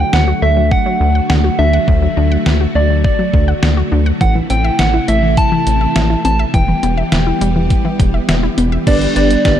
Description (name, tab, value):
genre	synth-pop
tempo	103 BPM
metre	4/4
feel	straight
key	unclear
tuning	A4 = 442 Hz
part	soft struck synth lead	melody	0.0-9.6 s	D5 to A5	-18 LUFS	right 1 dB	chorus
part	string machine, violas	sustained chords	0.0-9.6 s	C3 to G4	-20 LUFS	equal	ensemble chorus
part	wide unison pluck	arpeggios	0.0-8.8 s	E3 to F#5	-21 LUFS	left 2 dB	none
part	rubbery square bass	bass	0.0-9.6 s	E1 to D2	-15 LUFS	equal	none
part	detuned 8-bit digital drum machine	drums	0.1-9.6 s	crash cymbal, hi-hat, kick drum, snare drum	-17 LUFS	equal	none
part	warbly dusty pluck	accompaniment	8.9-9.6 s	B3 to E5	-15 LUFS	right 3 dB	chorus
room	light reverb, digital ambience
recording	dark, warm production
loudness	-11 LUFS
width	side -10 dB against mid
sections	0.0-8.9 A section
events	none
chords	0.0 D; 4.2 Am; 6.5 Em; 8.9 G